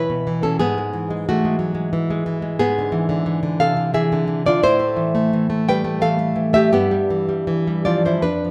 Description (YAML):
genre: romantic piece for solo classical guitar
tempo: 88 BPM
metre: 3/4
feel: uneven beats, rubato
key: unclear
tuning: A4 = 441 Hz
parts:
  - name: nylon-string guitar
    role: solo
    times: 0.0-8.5 s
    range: F2 to G5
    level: -20 LUFS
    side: equal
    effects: none
room: wet stone room reverb, RT60 1.3 s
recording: band playing live in one room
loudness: -19 LUFS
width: mono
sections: 0.0-8.5 A section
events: none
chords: 0.0 E5; 0.6 E/G#; 2.6 E7/G#; 4.6 Am; 6.7 Em/G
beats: | 0.61 1.27 1.93 | 2.60 3.27 3.95 | 4.64 5.33 6.03 | 6.74 7.47 8.22